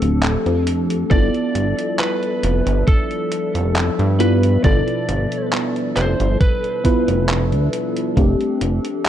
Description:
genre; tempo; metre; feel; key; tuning
vaporwave; 68 BPM; 4/4; straight; unclear; A4 = 438 Hz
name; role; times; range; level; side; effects
lightly driven lead guitar; melody; 0.0-7.7 s; A4 to D5; -25 LUFS; equal; tape echo
mellow FM electric piano; accompaniment; 0.0-9.1 s; B2 to B4; -21 LUFS; equal; analog chorus, vintage 12-bit sampler grit, tape echo
warbly tape-like pad; sustained chords; 0.0-9.1 s; F3 to E5; -27 LUFS; left 1 dB; chorus, built-in reverb, vintage 12-bit sampler grit
chorused synth bass; bass; 0.0-8.8 s; D1 to G2; -18 LUFS; equal; none
detuned 8-bit digital drum machine; drums; 0.0-9.1 s; handclaps, hi-hat; -25 LUFS; equal; none
electronic kick drum; drums; 1.1-8.4 s; none; -16 LUFS; equal; none
room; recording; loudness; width
light reverb; dark, warm production; -16 LUFS; side -10 dB against mid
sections
0.0-9.1 A section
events
none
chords
0.0 F69; 1.1 G13; 8.2 F69

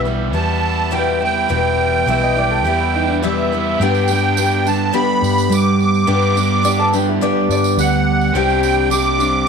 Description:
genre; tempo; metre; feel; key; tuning
folk rock and heartland rock; 105 BPM; 4/4; straight; unclear; A4 = 440 Hz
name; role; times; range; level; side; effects
picked steel-string acoustic guitar; accompaniment; 0.0-9.5 s; E2 to G4; -19 LUFS; left 11 dB; none
crunchy overdriven guitar; riff; 0.0-9.5 s; E2 to G4; -22 LUFS; right 14 dB; none
hollow-body short-scale picked electric bass; bass; 0.0-9.4 s; E1 to G2; -20 LUFS; right 1 dB; none
musette accordion; melody; 0.3-9.5 s; E5 to D6; -19 LUFS; right 3 dB; none
electric guitar through a small old amp; second line; 2.1-7.8 s; D4 to E5; -22 LUFS; right 1 dB; none
tambourine; percussion; 3.9-9.3 s; none; -29 LUFS; right 17 dB; none
room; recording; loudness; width
moderate echo chamber reverb, RT60 2.1 s; 1960s-style stereo with parts hard left and right; -14 LUFS; side -6 dB against mid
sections
0.0-3.8 A section; 3.8-9.5 B section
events
none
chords
0.0 Em; 3.8 G; 8.3 Csus2

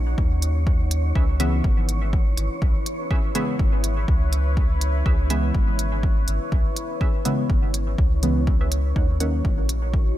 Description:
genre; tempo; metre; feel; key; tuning
dub techno; 123 BPM; 4/4; swing 56% on 16ths; unclear; A4 = 440 Hz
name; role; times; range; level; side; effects
deep dark ambient pad; sustained chords; 0.0-10.2 s; Eb4 to Db5; -32 LUFS; left 1 dB; chorus, built-in reverb, sidechain pumping
round analog bass; bass; 0.0-10.1 s; Ab1 to Eb2; -23 LUFS; equal; sidechain pumping
wind-like tuned noise texture; texture; 0.0-10.2 s; Db4 to Db5; -37 LUFS; right 1 dB; built-in reverb, sidechain pumping
electronic kick drum; drums; 0.2-10.0 s; none; -21 LUFS; equal; none
electronic hi-hat; drums; 0.4-9.8 s; none; -27 LUFS; right 2 dB; none
wavetable chord stab; riff; 1.2-9.3 s; Db4 to Gb5; -36 LUFS; right 4 dB; sidechain pumping, dub echo
deep mellow chord stab; stabs; 1.4-10.2 s; Db3 to Db4; -28 LUFS; equal; chorus, phaser, sidechain pumping, dub echo
room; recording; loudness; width
digital ambience; none; -19 LUFS; side -14 dB against mid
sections
0.0-10.2 A section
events
none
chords
0.0 Ebm7; 1.2 Dbm7; 9.0 Ebm7

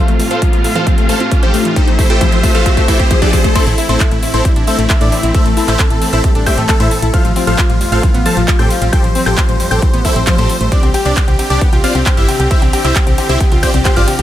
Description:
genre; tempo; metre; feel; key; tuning
uplifting trance; 134 BPM; 4/4; straight; A minor; A4 = 440 Hz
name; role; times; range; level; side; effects
supersaw chords; melody; 0.0-14.2 s; C4 to A5; -17 LUFS; right 1 dB; sidechain pumping, low-pass filter, digital delay
clear studio string section; sustained chords; 0.0-14.2 s; A2 to F5; -22 LUFS; right 1 dB; sidechain pumping
analog pluck; arpeggios; 0.0-14.2 s; F2 to C5; -20 LUFS; left 5 dB; chorus, sidechain pumping, digital delay
riser; sound effects; 0.0-3.6 s; none; -22 LUFS; left 1 dB; none
big-room dance drum kit; drums; 0.1-14.2 s; crash cymbal, handclaps, hi-hat, ride cymbal; -21 LUFS; equal; none
electronic kick drum; drums; 0.4-13.9 s; none; -13 LUFS; equal; none
bright baby grand piano; second line; 3.6-14.2 s; E5 to A6; -23 LUFS; left 2 dB; sidechain pumping, digital delay
solid FM bass; bass; 3.7-14.2 s; G1 to A2; -17 LUFS; equal; sidechain pumping
room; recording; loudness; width
light reverb, digital ambience; none; -10 LUFS; side -12 dB against mid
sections
0.0-3.6 A section; 3.6-14.2 B section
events
build-up 0.0-3.6; drum fill 0.0-3.6; riser 0.0-3.6; filter sweep on synth pluck 0.0-3.6; drop 3.6-14.2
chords
0.0 Fadd9/A; 3.6 Am; 7.1 Fadd9/A; 10.7 Csus2

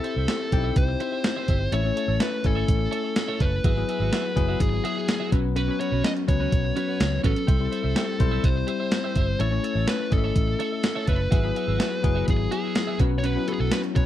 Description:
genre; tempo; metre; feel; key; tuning
1980s-style pop; 125 BPM; 4/4; straight; E major; A4 = 440 Hz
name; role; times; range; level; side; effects
fuzz lead guitar; melody; 0.0-14.1 s; G#4 to D#5; -29 LUFS; right 1 dB; distortion, slapback echo
bell-like tine electric piano; accompaniment; 0.0-14.1 s; F#3 to G#5; -28 LUFS; left 11 dB; none
twelve-string electric guitar; riff; 0.0-14.0 s; C#4 to E5; -34 LUFS; right 7 dB; lush chorus, slapback echo
gated 80s digital drum machine; drums; 0.0-14.1 s; hi-hat, kick drum, snare drum; -24 LUFS; right 1 dB; gated reverb, gated reverb snare
vintage muted fingered electric bass; bass; 0.2-14.1 s; F#1 to C#2; -26 LUFS; right 1 dB; none
room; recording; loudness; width
light reverb; dry, close 1970s-style studio recording; -21 LUFS; side -12 dB against mid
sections
0.0-14.1 A section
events
none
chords
0.0 C; 1.7 A; 3.6 Eadd9; 5.3 Bsus2; 7.5 C; 9.4 A; 11.3 Eadd9; 13.0 Bsus2

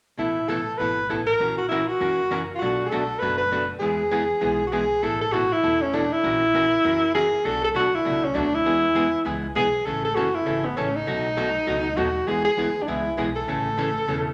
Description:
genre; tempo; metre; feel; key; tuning
country, western swing; 199 BPM; 4/4; swing 61% on 8ths; A major; A4 = 441 Hz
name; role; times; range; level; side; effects
breathy alto saxophone; melody; 0.2-14.3 s; B3 to B4; -24 LUFS; equal; none
archtop guitar, miked and amplified; accompaniment; 0.2-14.3 s; B2 to A#4; -30 LUFS; equal; none
upright bass; bass; 0.2-14.3 s; E1 to F#2; -39 LUFS; equal; none
room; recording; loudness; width
wet large studio reverb, RT60 1.2 s; none; -23 LUFS; mono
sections
0.2-5.0 A section; 5.0-14.3 B section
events
none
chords
0.2 Asus2; 1.4 F#7/A#; 2.6 Bm7; 3.8 E; 5.0 Asus2; 6.2 F#7/A#; 7.4 Bm7; 8.7 E; 9.9 A; 11.1 B7; 12.3 E; 13.5 A

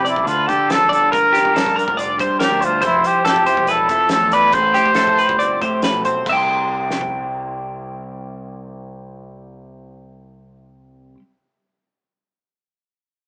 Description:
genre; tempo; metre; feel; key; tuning
math rock and midwest emo; 140 BPM; 4/4; straight; C major; A4 = 440 Hz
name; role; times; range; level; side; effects
breathy trumpet; melody; 0.0-5.8 s; E4 to C5; -18 LUFS; equal; none
twelve-string electric guitar; accompaniment; 0.0-11.2 s; G2 to G4; -32 LUFS; equal; spring reverb
twelve-string electric guitar; arpeggios; 0.0-11.2 s; G4 to C6; -22 LUFS; equal; none
growling fingered electric bass; bass; 0.0-11.1 s; E1 to D3; -32 LUFS; equal; overdrive
loose indie drum kit; drums; 0.1-7.1 s; crash cymbal, hi-hat, kick drum, snare drum; -28 LUFS; equal; none
room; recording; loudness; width
light reverb; rough rehearsal-room recording, warm saturation, small speaker sound; -17 LUFS; mono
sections
0.0-6.3 A section; 6.3-9.7 B section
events
none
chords
0.3 Dm; 0.9 Gm7; 2.8 Fmaj9; 4.5 Am9; 6.3 C

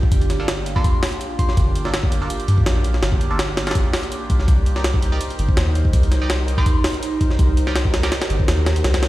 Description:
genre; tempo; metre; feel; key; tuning
drum and bass, jungle; 165 BPM; 4/4; swing 53% on 16ths; G minor; A4 = 440 Hz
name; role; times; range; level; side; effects
warbly tape-like pad; sustained chords; 0.0-9.1 s; Bb3 to C5; -27 LUFS; right 1 dB; chorus, built-in reverb, phaser
soft dub sub bass; bass; 0.0-9.1 s; G1 to G2; -20 LUFS; equal; none
jungle sampler-style drum kit; drums; 0.0-9.1 s; hi-hat, kick drum, snare drum; -19 LUFS; equal; none
band-passed chord stab; stabs; 0.4-8.1 s; Bb3 to D5; -31 LUFS; right 2 dB; phaser, cassette tape, dub echo
glassy synth bell; melody; 0.8-1.5, 6.6-6.8 s; C6; -33 LUFS; left 1 dB; chorus, dub echo
room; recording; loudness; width
light reverb, digital ambience; played on a big sound system in a bare room, stone room reverb; -16 LUFS; side -16 dB against mid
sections
0.0-9.1 A section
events
none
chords
0.0 Gm7; 4.5 Cm7

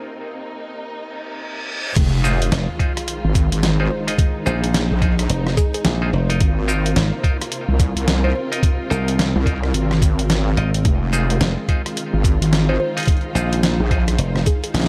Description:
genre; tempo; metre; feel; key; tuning
glitch hop; 108 BPM; 4/4; swing 62% on 16ths; F minor pentatonic; A4 = 441 Hz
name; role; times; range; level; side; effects
dark symphonic string section; sustained chords; 0.0-14.9 s; C3 to F4; -32 LUFS; equal; vintage 12-bit sampler grit, sidechain pumping
reverse cymbal and sub drop; sound effects; 1.1-4.2 s; none; -32 LUFS; equal; none
wobble bass; bass; 2.0-14.2 s; F1 to C2; -21 LUFS; equal; chorus, high-pass filter
boom bap sampler-style drum kit; drums; 2.0-14.9 s; crash cymbal, hi-hat, rim click, shaker, snare drum; -25 LUFS; equal; none
electronic kick drum; drums; 2.0-14.6 s; none; -20 LUFS; equal; none
granular cloud pad; texture; 2.9-14.9 s; C4 to Ab5; -34 LUFS; equal; built-in reverb, sidechain pumping
clav; stabs; 2.2-14.0 s; Eb4 to Eb5; -30 LUFS; equal; sidechain pumping, delay
dry thumbed slap bass; bass; 2.5-14.9 s; F1 to C2; -21 LUFS; equal; none
woody wave-folded pluck; melody; 3.8-9.4, 12.7-14.7 s; Ab4 to C5; -29 LUFS; equal; chorus, delay
room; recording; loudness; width
digital ambience; high-pass filter; -19 LUFS; mono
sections
0.0-2.0 A section; 2.0-14.9 B section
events
break 0.0-2.0; build-up 0.0-2.0; filter sweep 0.0-2.0; reverse cymbal 1.1-2.0; drop 2.0-14.9; impact 2.0-4.2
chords
0.0 Abadd9 (rootless); 2.0 Fm7; 6.4 Ab69; 10.9 Fm7

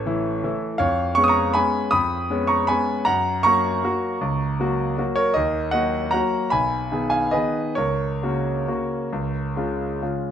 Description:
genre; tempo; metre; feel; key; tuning
classical, piano waltz; 130-168 BPM; 3/4; rubato; F# major; A4 = 439 Hz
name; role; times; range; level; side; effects
clear grand piano; solo; 0.0-10.3 s; A1 to D#6; -20 LUFS; equal; none
room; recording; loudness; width
light reverb; close, detailed microphones; -20 LUFS; side -9 dB against mid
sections
0.0-10.3 A section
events
none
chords
0.0 A; 0.8 C#7/E#; 3.1 F#; 5.4 D#m; 6.5 G#m/B; 7.8 F#/C#; 9.1 C#

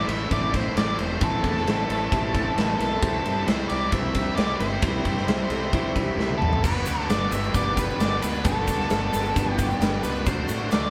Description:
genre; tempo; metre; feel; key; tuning
classic rock; 133 BPM; 4/4; straight; unclear; A4 = 440 Hz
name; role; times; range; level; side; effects
octave-fuzz lead guitar; melody; 0.0-10.9 s; A4 to E5; -31 LUFS; equal; distortion
overdriven reed electric piano; accompaniment; 0.0-10.9 s; C4 to D5; -38 LUFS; equal; none
tonewheel organ; sustained chords; 0.0-10.9 s; A3 to E5; -40 LUFS; equal; none
biting overdriven guitar; riff; 0.0-10.9 s; G2 to E4; -35 LUFS; equal; none
overdriven electric guitar; riff; 0.0-10.9 s; G2 to G4; -35 LUFS; equal; none
fuzz fingered electric bass; bass; 0.0-10.9 s; E1 to A2; -32 LUFS; equal; overdrive
big rock drum kit; drums; 0.1-10.8 s; crash cymbal, kick drum, ride cymbal, snare drum, toms; -28 LUFS; equal; none
clean lap steel guitar; second line; 1.9-6.3, 9.2-9.9 s; D4 to C5; -37 LUFS; equal; none
egg shaker; percussion; 6.6-10.8 s; none; -46 LUFS; equal; none
room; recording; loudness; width
moderate stone room reverb, RT60 1.1 s; band playing live in one room; -24 LUFS; mono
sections
0.0-10.9 A section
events
drum fill 6.2-6.6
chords
0.0 Am; 3.0 C; 6.6 G; 10.3 D

